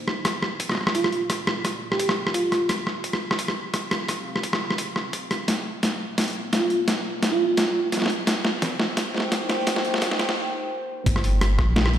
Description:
half-time drum and bass; 172 BPM; 4/4; swing 54% on 16ths, half-time; G minor; A4 = 440 Hz
deep dark ambient pad; sustained chords; 0.0-11.0 s; Bb3 to G5; -33 LUFS; equal; chorus, built-in reverb, sidechain pumping
boom bap sampler-style drum kit; drums; 0.1-12.0 s; hi-hat, rim click, snare drum; -24 LUFS; equal; overdrive, small room ambience
electronic kick drum; drums; 0.2-11.7 s; -28 LUFS; equal; high-pass filter on kick, small room ambience
bell-like FM electric piano; melody; 0.9-2.7, 6.5-7.8 s; F4 to G4; -25 LUFS; right 2 dB; chorus, tremolo, digital delay
saturated sub bass; bass; 11.1-12.0 s; G1 to Bb1; -21 LUFS; equal; tube saturation
wet lush hall reverb, RT60 1.8 s; played on a big sound system in a bare room, stone room reverb, high-pass filter; -22 LUFS; side -10 dB against mid
0.0-11.1 A section
build-up 0.0-11.1; filter sweep on ambient pad 0.0-11.1; drum fill 5.5-10.4; break 10.4-11.1
0.0 Gmadd9; 2.7 Fsus2; 5.5 G7; 8.3 Cm7; 11.1 Gm
0.25 0.60 0.95 | 1.30 1.65 2.00 2.35 | 2.69 3.04 3.39 3.74 | 4.09 4.44 4.79 5.14 | 5.49 5.83 6.18 6.53 | 6.88 7.23 7.58 7.93 | 8.28 8.62 8.97 9.32 | 9.67 10.02 10.37 10.72 | 11.07 11.41 11.76

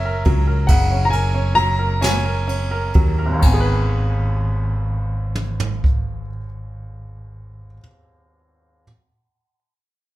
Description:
six-eight pop ballad; 42-47 BPM (dotted quarters); 6/8; straight; G# minor; A4 = 440 Hz
warm concert grand piano; melody; 0.0-7.8 s; E5 to A#5; -22 LUFS; left 1 dB
bright upright piano; accompaniment; 0.0-8.8 s; G#1 to B4; -25 LUFS; equal
mellow fretless electric bass; bass; 0.0-7.8 s; F#1 to D#2; -21 LUFS; equal
jazz brush drum kit; drums; 0.2-6.1 s; crash cymbal, kick drum, ride cymbal, snare drum, toms; -20 LUFS; right 1 dB
moderate large studio reverb, RT60 0.9 s; band playing live in one room; -16 LUFS; side -16 dB against mid
0.0-3.4 A section; 3.4-6.3 B section
slowing down 0.0-3.4
0.0 F#add9; 3.4 G#m
| 0.70 2.03 | 3.44 4.88

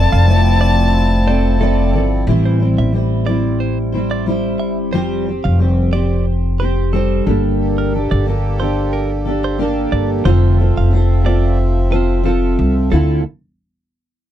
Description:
acoustic pop; 90 BPM; 4/4; swing 55% on 16ths; D minor; A4 = 440 Hz
clear violin; melody; 0.0-1.9 s; A5; -20 LUFS; left 6 dB
fingerpicked steel-string acoustic guitar; accompaniment; 0.0-13.2 s; A2 to D5; -18 LUFS; equal; double-tracked left and right
hand-pumped harmonium; sustained chords; 0.0-2.2, 7.6-13.2 s; D3 to E5; -26 LUFS; equal
upright bass; bass; 0.0-13.2 s; F1 to D2; -15 LUFS; equal
direct-recorded clean electric guitar; arpeggios; 0.1-13.2 s; A4 to F5; -26 LUFS; right 8 dB
little or no reverb; dry, close 1970s-style studio recording; -13 LUFS; side -11 dB against mid
0.0-2.3 A section; 2.3-12.9 B section; 12.9-14.3 C section
0.0 Dm7/F; 2.3 Am7; 4.9 Fsus2; 7.3 Gmadd9; 10.3 Dm7/F; 12.9 Dm9
0.28 0.94 1.61 | 2.27 2.94 3.60 4.27 | 4.94 5.60 6.27 6.93 | 7.60 8.27 8.93 9.60 | 10.26 10.93 11.59 12.26 | 12.92

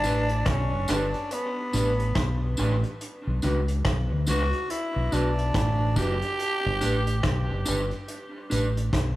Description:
roots reggae; 71 BPM; 4/4; swing 60% on 16ths; A4 = 440 Hz
growling tenor saxophone; melody; 0.0-7.7 s; B3 to G4; -29 LUFS; equal; tape echo
electric guitar at the edge of break-up; accompaniment; 0.0-8.7 s; D4 to B4; -31 LUFS; right 1 dB; spring reverb, tape echo
deep dub fingered electric bass; bass; 0.0-9.2 s; F#1 to D2; -26 LUFS; equal
vintage brush drum kit; drums; 0.0-9.2 s; hi-hat, kick drum, rim click; -31 LUFS; equal; analog delay
tambourine; percussion; 0.0-8.7 s; -38 LUFS; right 1 dB
light reverb, small room ambience; echo-heavy mix; -23 LUFS; side -16 dB against mid
0.0-9.2 A section
0.0 G; 3.0 Bm; 6.4 G
0.46 1.31 2.15 | 3.00 3.85 4.70 5.54 | 6.39 7.24 8.08 8.93

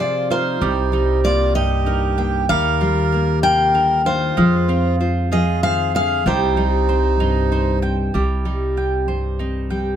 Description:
acoustic folk duo or small band; 64 BPM (dotted quarters); 6/8; straight; C minor; A4 = 440 Hz
picked steel-string acoustic guitar; melody; 0.0-7.8 s; C5 to G5; -20 LUFS; left 2 dB
melodica; second line; 0.0-7.8 s; Eb4 to Bb4; -26 LUFS; right 10 dB
nylon-string guitar; accompaniment; 0.0-10.0 s; G2 to Ab4; -21 LUFS; left 2 dB
mandolin; arpeggios; 0.0-10.0 s; G3 to G5; -26 LUFS; right 8 dB
upright bass; bass; 0.6-10.0 s; C2 to F2; -21 LUFS; equal
light reverb; -16 LUFS; side -9 dB against mid
0.0-8.1 A section; 8.1-10.0 B section
0.0 Fm; 0.6 Cm7; 2.5 Ebadd9; 4.4 Fm; 6.3 Cm
| 0.61 1.55 | 2.49 3.43 | 4.37 5.31 | 6.25 7.20 | 8.14 9.08

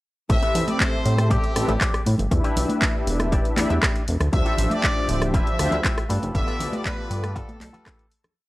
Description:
nu-disco, nu disco; 119 BPM; 4/4; straight; A minor; A4 = 439 Hz
clear trumpet section; melody; 0.3-8.1 s; G4 to E5; -29 LUFS; left 1 dB; analog delay
mellow synth brass; accompaniment; 0.3-7.6 s; F3 to E5; -28 LUFS; left 1 dB; chorus, sidechain pumping
electric guitar with an envelope filter; riff; 0.3-8.1 s; C4 to D5; -33 LUFS; left 2 dB; lush chorus
chorused synth bass; bass; 0.3-7.7 s; D1 to A2; -23 LUFS; equal
electronic kick drum; drums; 0.3-8.0 s; -24 LUFS; equal; small room ambience
house drum kit; drums; 0.3-8.3 s; handclaps, hi-hat, rim click; -27 LUFS; equal; small room ambience
congas; percussion; 0.5-8.3 s; -31 LUFS; right 1 dB
digital ambience; dry, gritty hardware recording; -20 LUFS; side -18 dB against mid
0.3-8.4 drop
drop 0.3-8.4; fade-out 5.7-8.4
0.3 Am9; 2.3 Em7; 4.3 Dm11; 6.1 G9
| 0.30 0.80 1.31 1.81 | 2.31 2.82 3.32 3.83 | 4.33 4.84 5.34 5.84 | 6.35 6.85 7.36 7.86

